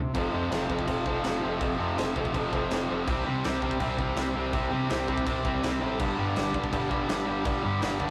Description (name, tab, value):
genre	punk rock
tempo	164 BPM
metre	4/4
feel	straight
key	unclear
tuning	A4 = 440 Hz
part	gritty driven synth bass	bass	0.0-8.1 s	F1 to C3	-35 LUFS	equal	distortion
part	distorted electric guitar	riff	0.1-8.1 s	F2 to C4	-32 LUFS	equal	overdrive
part	big rock drum kit	drums	0.1-8.1 s	crash cymbal, kick drum, snare drum	-36 LUFS	equal	none
part	overdriven semi-hollow guitar	riff	0.2-8.1 s	C3 to G4	-37 LUFS	equal	none
room	moderate small room reverb, RT60 0.5 s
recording	rough rehearsal-room recording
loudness	-28 LUFS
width	mono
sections	0.2-8.1 A section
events	drum fill 0.0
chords	0.2 F; 3.1 C; 6.0 G